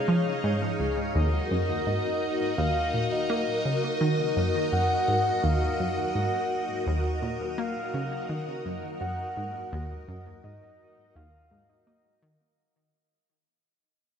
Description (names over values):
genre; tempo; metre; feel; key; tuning
ambient, sequencer-driven space music; 84 BPM; 4/4; straight; Eb minor; A4 = 440 Hz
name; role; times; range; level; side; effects
string machine, full ensemble; sustained chords; 0.0-12.5 s; Gb4 to F5; -30 LUFS; left 1 dB; ensemble chorus
bubbling stepped-filter texture; texture; 0.0-12.6 s; Eb4 to Eb5; -38 LUFS; left 1 dB; chorus, built-in reverb
analog pluck; riff; 0.1-12.4 s; Db2 to Bb3; -29 LUFS; right 1 dB; chorus, tape echo
soft octave-layered synth lead; melody; 1.9-12.4 s; Eb5 to Gb5; -31 LUFS; left 1 dB; chorus, tape echo
room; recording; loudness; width
wet plate reverb, RT60 2.9 s; echo-heavy mix; -25 LUFS; side -7 dB against mid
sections
0.0-12.6 A section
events
fade-out 5.0-12.6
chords
0.0 Db; 1.2 Ebm